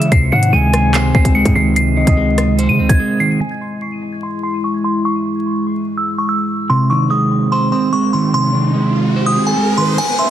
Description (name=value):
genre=hip hop, drill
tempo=146 BPM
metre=4/4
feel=half-time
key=C# harmonic minor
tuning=A4 = 440 Hz
part: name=delicate synth tine bell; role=melody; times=0.0-10.3 s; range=G#5 to D#7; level=-19 LUFS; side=right 1 dB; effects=chorus, low-pass filter, tape echo
part: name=gliding portamento lead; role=second line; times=0.0-2.5, 10.2-10.3 s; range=D#5 to G#5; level=-24 LUFS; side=left 4 dB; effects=chorus, tape echo
part: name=electric guitar at the edge of break-up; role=accompaniment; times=0.0-3.4, 6.7-10.0 s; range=B#2 to C#5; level=-16 LUFS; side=right 2 dB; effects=spring reverb, low-pass filter
part: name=dark analog pad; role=sustained chords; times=0.0-9.9 s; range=B#2 to E4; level=-22 LUFS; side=left 2 dB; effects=chorus, low-pass filter
part: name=hard-hitting 808-style bass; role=bass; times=0.0-3.0 s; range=C#2 to C#3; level=-17 LUFS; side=equal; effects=none
part: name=drill drum kit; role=drums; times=0.0-3.0, 10.0-10.1 s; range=crash cymbal, handclaps, hi-hat, kick drum, rim click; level=-15 LUFS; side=equal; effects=none
part: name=riser and downlifter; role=sound effects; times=7.9-10.3 s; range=none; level=-23 LUFS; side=equal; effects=none
room=light reverb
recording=dense, heavily limited modern master, vinyl crackle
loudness=-12 LUFS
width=side -11 dB against mid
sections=0.0-3.4 A section; 3.4-10.0 B section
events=break 3.0-3.4; riser 7.9-10.0; kick muted 10.0-10.3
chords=0.1 G#; 3.4 C#m; 6.7 G#